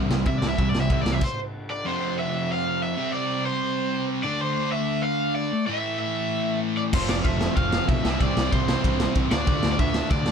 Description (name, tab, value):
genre	punk rock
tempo	189 BPM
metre	4/4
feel	straight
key	unclear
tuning	A4 = 440 Hz
part	distorted electric guitar	riff	0.0-10.3 s	F2 to D4	-26 LUFS	equal	distortion
part	distorted electric guitar	riff	0.0-1.2, 6.9-10.3 s	C3 to F4	-28 LUFS	equal	distortion
part	modern bright picked electric bass	bass	0.0-1.2, 6.9-10.3 s	F1 to C3	-28 LUFS	equal	none
part	raw garage drum kit	drums	0.1-1.3, 6.9-10.3 s	crash cymbal, kick drum, ride cymbal, snare drum	-26 LUFS	equal	none
part	cranked stack guitar	melody	0.3-10.3 s	C5 to F5	-28 LUFS	right 1 dB	overdrive
room	little or no reverb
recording	none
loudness	-22 LUFS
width	side -7 dB against mid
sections	0.0-1.9 A section; 1.9-10.3 B section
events	overdriven electric guitar solo 0.0-1.9; stop 1.2-1.9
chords	0.0 C; 1.9 F5; 3.0 C5; 4.2 Dm; 5.7 A5; 6.9 F; 8.1 C; 9.3 Dm